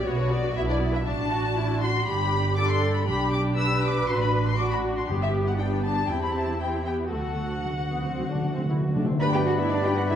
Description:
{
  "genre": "quick classical-period movement for symphony orchestra",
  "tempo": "119 BPM",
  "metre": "4/4",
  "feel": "straight",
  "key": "G major",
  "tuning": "A4 = 440 Hz",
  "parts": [
    { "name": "muted chamber violin section", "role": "melody", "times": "0.0-10.2 s", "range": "C#5 to E6", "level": "-32 LUFS", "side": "left 3 dB", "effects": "none" },
    { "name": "muted chamber violin section", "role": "second line", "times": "0.0-10.2 s", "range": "C#5 to E6", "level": "-33 LUFS", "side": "left 4 dB", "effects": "none" },
    { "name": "muted studio viola section", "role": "accompaniment", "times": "0.0-10.2 s", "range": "A3 to B4", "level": "-30 LUFS", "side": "left 1 dB", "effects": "none" },
    { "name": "muted symphonic cello section", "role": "bass", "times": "0.0-10.2 s", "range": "D4 to B4", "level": "-30 LUFS", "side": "right 1 dB", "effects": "none" },
    { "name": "muted studio double bass section", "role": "bass", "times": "0.1-10.2 s", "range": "G1 to G2", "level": "-28 LUFS", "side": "right 2 dB", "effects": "none" },
    { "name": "timpani", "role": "percussion", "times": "5.1-9.2 s", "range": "G2 to D3", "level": "-28 LUFS", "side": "equal", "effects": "none" },
    { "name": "bright clarinet", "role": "second line", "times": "9.2-10.2 s", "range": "B4", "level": "-34 LUFS", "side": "left 3 dB", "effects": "none" },
    { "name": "mellow silver concert flute", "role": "second line", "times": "9.2-10.2 s", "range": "B5", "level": "-32 LUFS", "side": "left 6 dB", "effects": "none" },
    { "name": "warm oboe", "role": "second line", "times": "9.2-10.2 s", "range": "D5", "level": "-32 LUFS", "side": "left 1 dB", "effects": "none" },
    { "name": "mellow French horn section", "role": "sustained chords", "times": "9.2-10.2 s", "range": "B3 to D4", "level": "-30 LUFS", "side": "left 4 dB", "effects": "none" }
  ],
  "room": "moderate scoring stage reverb, RT60 1.9 s",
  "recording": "dark, warm production",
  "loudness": "-23 LUFS",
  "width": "side -9 dB against mid",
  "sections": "0.0-9.2 A section",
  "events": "timpani fill 7.1-9.2",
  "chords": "0.1 Bm; 1.1 D/A; 2.1 G; 3.1 G/B; 4.1 D/A; 5.1 G; 6.1 C/E; 7.1 D; 9.2 G",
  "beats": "0.06 0.56 | 1.07 1.57 2.08 2.58 | 3.08 3.58 4.09 4.59 | 5.09 5.59 6.10 6.61 | 7.13 7.65 8.17 8.69 | 9.20 9.72"
}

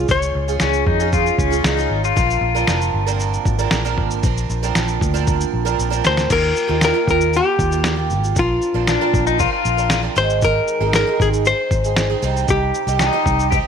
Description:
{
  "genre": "acoustic pop",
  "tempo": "116 BPM",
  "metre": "4/4",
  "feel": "straight",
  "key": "Eb major",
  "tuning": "A4 = 440 Hz",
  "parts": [
    { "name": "hollow-body jazz guitar", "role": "melody", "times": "0.0-1.9, 6.1-13.5 s", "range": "F4 to Db5", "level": "-20 LUFS", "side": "left 4 dB", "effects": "none" },
    { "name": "picked twelve-string acoustic guitar", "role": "accompaniment", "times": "0.0-13.7 s", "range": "Ab2 to Bb4", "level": "-22 LUFS", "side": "right 13 dB", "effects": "none" },
    { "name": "vintage muted fingered electric bass", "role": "bass", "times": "0.0-13.6 s", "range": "F1 to F2", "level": "-21 LUFS", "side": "left 1 dB", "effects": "none" },
    { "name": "dusty soul sampler-style drum kit", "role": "drums", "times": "0.1-13.6 s", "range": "crash cymbal, kick drum, shaker, snare drum", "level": "-22 LUFS", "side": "left 1 dB", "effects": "overdrive" },
    { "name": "pedal steel guitar", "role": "second line", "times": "0.6-3.0, 8.9-13.6 s", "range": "Db4 to G4", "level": "-20 LUFS", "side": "left 12 dB", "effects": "none" }
  ],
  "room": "light reverb",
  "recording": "1960s-style stereo with parts hard left and right",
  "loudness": "-15 LUFS",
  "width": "side -7 dB against mid",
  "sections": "0.0-6.3 A section; 6.3-13.7 B section",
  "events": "drum fill 5.3-6.3",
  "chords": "0.0 Db; 2.2 Bbadd9; 6.3 Ebadd9; 8.4 Bbadd9; 10.2 Ab; 12.2 Cm",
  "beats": "| 0.10 0.61 1.13 1.65 | 2.17 2.69 3.20 3.72 | 4.24 4.75 5.27 5.79 | 6.30 6.82 7.33 7.85 | 8.36 8.88 9.39 9.91 | 10.43 10.94 11.46 11.97 | 12.49 13.00 13.52"
}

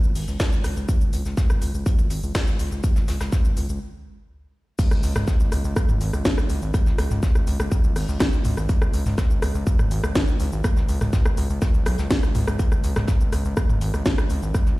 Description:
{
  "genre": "melodic techno",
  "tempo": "123 BPM",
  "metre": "4/4",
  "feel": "straight",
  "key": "unclear",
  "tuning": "A4 = 442 Hz",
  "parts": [
    { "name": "gritty driven synth bass", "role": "bass", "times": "0.0-14.8 s", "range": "G#1 to C#2", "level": "-25 LUFS", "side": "equal", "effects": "distortion, sidechain pumping" },
    { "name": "techno drum kit", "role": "drums", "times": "0.0-14.8 s", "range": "crash cymbal, hi-hat, rim click, shaker, snare drum, toms", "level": "-27 LUFS", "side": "equal", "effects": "overdrive, high-pass filter on perc, high-pass filter on snare, high-pass filter on hats, high-pass filter on toms, high-pass filter on cymbals" },
    { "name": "soft brush drum kit", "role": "drums", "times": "0.2-14.8 s", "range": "hi-hat, snare drum", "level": "-42 LUFS", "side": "left 2 dB", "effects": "high-pass filter on hats, high-pass filter on snare, high-pass filter on room" },
    { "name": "electronic kick drum", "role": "drums", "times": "0.4-14.6 s", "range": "none", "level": "-21 LUFS", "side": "equal", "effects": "distortion" }
  ],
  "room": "little or no reverb",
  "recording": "played on a big sound system in a bare room, large studio reverb",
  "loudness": "-19 LUFS",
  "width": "side -20 dB against mid",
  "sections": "0.0-4.8 A section; 4.8-14.8 B section",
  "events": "build-up 0.0-4.8; stop 3.8-4.8; drop 4.8-14.8",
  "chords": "none",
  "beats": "0.40 | 0.89 1.37 1.86 2.35 | 2.84 3.33 3.81 4.30 | 4.79 5.28 5.76 6.25 | 6.74 7.23 7.72 8.20 | 8.69 9.18 9.67 10.15 | 10.64 11.13 11.62 12.11 | 12.59 13.08 13.57 14.06 | 14.54"
}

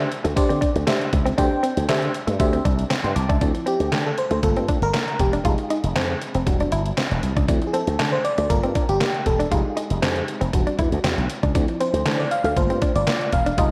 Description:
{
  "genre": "early-eighties boogie funk",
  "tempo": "118 BPM",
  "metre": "4/4",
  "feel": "straight",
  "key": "D minor from 3.4 s",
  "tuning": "A4 = 439 Hz",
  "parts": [
    { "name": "FM electric piano", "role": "accompaniment", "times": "0.0-13.7 s", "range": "F3 to D6", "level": "-27 LUFS", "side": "equal", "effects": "chorus" },
    { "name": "slap bass with an envelope filter", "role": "bass", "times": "0.0-13.7 s", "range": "E1 to D3", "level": "-26 LUFS", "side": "equal", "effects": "none" },
    { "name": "detuned 8-bit digital drum machine", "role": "drums", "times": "0.1-13.7 s", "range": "handclaps, hi-hat, kick drum, snare drum", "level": "-26 LUFS", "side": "equal", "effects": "none" },
    { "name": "direct-recorded clean electric guitar", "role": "riff", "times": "0.2-13.7 s", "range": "A3 to F4", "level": "-30 LUFS", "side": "equal", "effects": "lush chorus" }
  ],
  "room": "moderate concert hall reverb, RT60 2.3 s",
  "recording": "big arena sound",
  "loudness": "-21 LUFS",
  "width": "mono",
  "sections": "0.0-3.4 A section; 3.4-13.7 B section",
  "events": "FM electric piano solo 3.4-13.7",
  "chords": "0.0 D9sus4; 3.4 Dm9; 4.4 Gm9; 5.4 Fm9; 6.5 Em9; 7.5 Dm9; 8.5 Gm9; 9.5 Fm9; 10.5 Em9; 11.6 Dm9; 12.6 Gm9",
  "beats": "0.36 0.87 | 1.38 1.89 2.40 2.91 | 3.42 3.92 4.43 4.94 | 5.45 5.96 6.47 6.97 | 7.48 7.99 8.50 9.01 | 9.52 10.03 10.53 11.04 | 11.55 12.06 12.57 13.08 | 13.59"
}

